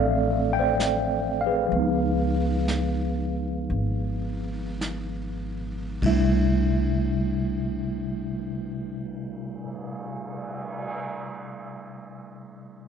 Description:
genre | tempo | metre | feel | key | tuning
jazz ballad | 47-70 BPM | 4/4 | swing 66% on 8ths | C major | A4 = 439 Hz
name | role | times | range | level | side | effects
mellow tine electric piano | accompaniment | 0.0-12.9 s | C3 to G5 | -26 LUFS | equal | medium stereo tremolo
upright bass | bass | 0.0-9.6 s | Ab1 to Db2 | -28 LUFS | equal | none
vintage brush drum kit | drums | 0.8-10.9 s | brushed snare drum, cymbal swell, hi-hat, kick drum, ride cymbal, snare drum | -36 LUFS | right 2 dB | none
room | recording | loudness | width
wet studio reverb, RT60 0.8 s | nothing above 10.6 kHz | -24 LUFS | side -7 dB against mid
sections
0.0-6.0 A section; 6.0-11.1 B section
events
slowing down 0.0-6.0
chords
0.0 F6; 1.7 Db9; 6.0 C69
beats
0.82 | 1.72 2.68 3.70 4.81 | 6.03 7.31 8.59 9.86

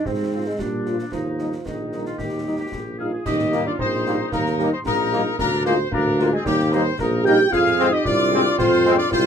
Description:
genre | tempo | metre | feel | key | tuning
military-style march for wind band | 113 BPM | 2/4 | straight | Eb major | A4 = 440 Hz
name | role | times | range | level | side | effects
warm euphonium | second line | 0.0-9.3 s | Eb3 to G4 | -25 LUFS | right 5 dB | none
warm woodwind section | second line | 0.0-9.3 s | Bb3 to Bb4 | -27 LUFS | left 2 dB | none
warm tuba | bass | 0.1-9.3 s | Bb1 to Bb2 | -24 LUFS | right 1 dB | none
concert snare drum, concert bass drum and clash cymbals | drums | 0.1-9.3 s | none | -32 LUFS | left 1 dB | none
bright trumpet section | melody | 0.3-9.3 s | G4 to G5 | -26 LUFS | left 3 dB | none
mellow French horn section | accompaniment | 0.3-9.0 s | F3 to F4 | -26 LUFS | left 2 dB | none
mellow wooden piccolo | second line | 3.0-9.3 s | G5 to G6 | -28 LUFS | left 5 dB | none
clear trombone section | sustained chords | 3.5-9.0 s | G3 to C4 | -24 LUFS | left 1 dB | none
room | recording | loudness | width
moderate booth ambience, RT60 0.3 s | minimal, uncompressed stereo recording | -18 LUFS | side -7 dB against mid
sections
0.0-3.3 A section; 3.3-9.3 B section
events
none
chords
0.1 Fm/Ab; 0.6 Bb; 1.1 Eb; 5.4 Bb7/D; 6.5 Eb; 7.5 Fm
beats
| 0.06 0.60 | 1.13 1.66 | 2.20 2.73 | 3.26 3.80 | 4.33 4.86 | 5.39 5.93 | 6.46 6.99 | 7.52 8.06 | 8.59 9.12

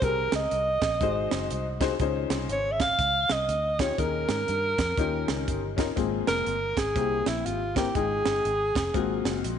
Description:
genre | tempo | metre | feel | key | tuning
uptempo gospel | 121 BPM | 4/4 | swing 61% on 8ths | Ab major | A4 = 440 Hz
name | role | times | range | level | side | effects
warm alto saxophone | melody | 0.0-9.4 s | E4 to F5 | -26 LUFS | right 1 dB | none
clear upright piano | accompaniment | 0.0-9.6 s | Ab2 to G5 | -30 LUFS | left 11 dB | none
fingered electric bass | bass | 0.0-9.6 s | F1 to Ab2 | -33 LUFS | equal | none
crisp fusion drum kit | drums | 0.0-9.6 s | hi-hat, kick drum, snare drum | -31 LUFS | right 4 dB | none
room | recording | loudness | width
light reverb, small room ambience | 1960s-style stereo, nothing above 10.3 kHz | -24 LUFS | side -8 dB against mid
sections
0.0-9.6 A section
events
none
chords
0.0 Abmaj9/C; 1.0 Ab7; 2.0 Dbmaj9; 4.0 Eb7sus4; 5.0 Eb9; 6.0 Ab69; 7.0 C7; 8.0 Fm9; 8.9 Ab13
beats
| 0.02 0.51 1.01 1.50 | 2.00 2.50 2.99 3.49 | 3.98 4.48 4.98 5.47 | 5.97 6.47 6.96 7.46 | 7.95 8.45 8.95 9.44

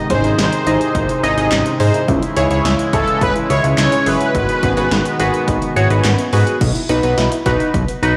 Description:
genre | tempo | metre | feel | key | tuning
synth-pop | 106 BPM | 4/4 | straight | unclear | A4 = 440 Hz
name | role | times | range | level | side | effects
chorused pulse-width pad | sustained chords | 0.0-6.6 s | B#2 to F#4 | -24 LUFS | equal | none
soft round pluck | arpeggios | 0.0-8.2 s | B3 to G#4 | -29 LUFS | equal | none
analog synth brass | melody | 0.1-6.0 s | A4 to C#5 | -23 LUFS | equal | chorus, tape echo
warm analog keys | accompaniment | 0.1-8.1 s | D#4 to D#5 | -21 LUFS | equal | chorus, phaser
fat analog bass | bass | 0.1-8.1 s | F#1 to G#2 | -20 LUFS | equal | none
punchy analog drum machine | drums | 0.1-8.2 s | crash cymbal, handclaps, hi-hat, kick drum, snare drum | -24 LUFS | equal | overdrive
room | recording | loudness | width
moderate lush hall reverb, RT60 2.0 s | blown-out, overdriven recording, overdrive, studio ambience | -16 LUFS | mono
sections
0.0-6.6 A section; 6.6-8.2 A section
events
none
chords
0.0 G#; 2.1 C#m; 4.3 G#m7; 6.6 B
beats
0.39 0.95 1.52 | 2.08 2.65 3.21 3.78 | 4.35 4.91 5.48 6.04 | 6.61 7.18 7.74

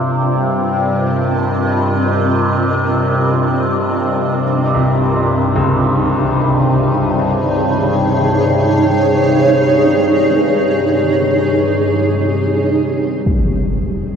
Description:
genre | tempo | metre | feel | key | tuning
dark ambient drone | free time | none | none | unclear | A4 = 440 Hz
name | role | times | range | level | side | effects
granular cloud pad | sustained chords | 0.0-14.2 s | C4 to Eb5 | -16 LUFS | right 1 dB | built-in reverb
warm grand piano | arpeggios | 0.0-14.2 s | C2 to F4 | -24 LUFS | equal | ping-pong delay
overtone-sweeping drone | drone | 0.0-14.2 s | C2 to C3 | -15 LUFS | equal | chorus, built-in reverb, phaser
impact | percussion | 13.3-13.5 s | none | -16 LUFS | equal | low-pass filter on sfx
room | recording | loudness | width
wet cathedral reverb, RT60 6.0 s | none | -12 LUFS | side -7 dB against mid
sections
0.0-13.3 A section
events
fade-in on ambient pad 0.0-13.3; fade-in on impacts and reversed cymbals 0.0-13.3; fade-out on grand piano 0.0-13.3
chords
0.0 Cm; 4.4 Eb5; 13.3 Cm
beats
free time

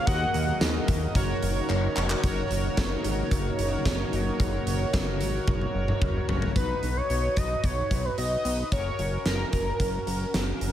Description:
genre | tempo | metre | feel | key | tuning
synth-pop | 111 BPM | 4/4 | straight | F# major | A4 = 443 Hz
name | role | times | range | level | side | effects
octave-doubled lead | melody | 0.0-0.6, 6.6-10.3 s | A#4 to F#5 | -30 LUFS | left 1 dB | chorus, tape echo
analog synth brass | accompaniment | 0.0-10.7 s | C#4 to D#5 | -32 LUFS | right 1 dB | chorus
string machine, cellos | sustained chords | 0.0-6.5 s | C#3 to G#4 | -34 LUFS | left 1 dB | ensemble chorus
fat analog bass | bass | 0.1-10.7 s | E#1 to D#2 | -29 LUFS | equal | none
huge arena drum kit | drums | 0.1-10.7 s | handclaps, hi-hat, kick drum, snare drum, toms | -28 LUFS | equal | gated reverb
room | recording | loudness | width
studio ambience | none | -24 LUFS | side -11 dB against mid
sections
0.0-2.2 A section; 2.2-6.6 B section; 6.6-10.7 C section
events
drum fill 1.7-2.2, 5.5-6.6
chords
0.1 D#m; 1.2 F#6; 6.6 B; 8.7 F#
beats
| 0.07 0.61 1.15 1.69 | 2.23 2.77 3.31 3.86 | 4.40 4.94 5.48 6.02 | 6.56 7.10 7.64 8.18 | 8.72 9.26 9.80 10.34

